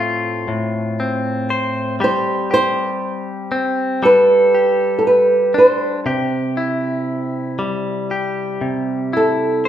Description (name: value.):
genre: folk.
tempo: 59 BPM.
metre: 4/4.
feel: straight.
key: C major.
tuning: A4 = 439 Hz.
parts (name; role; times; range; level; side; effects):
flamenco guitar; melody; 0.0-9.6 s; A4 to C5; -13 LUFS; right 1 dB; none.
direct-recorded clean electric guitar; accompaniment; 0.0-9.7 s; A2 to C5; -20 LUFS; left 1 dB; none.
room: moderate large studio reverb, RT60 1.3 s.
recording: band playing live in one room.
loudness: -15 LUFS.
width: side -10 dB against mid.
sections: 0.0-9.7 A section.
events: none.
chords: 0.0 F/A; 2.0 Gsus4; 4.0 Gadd9; 6.1 C.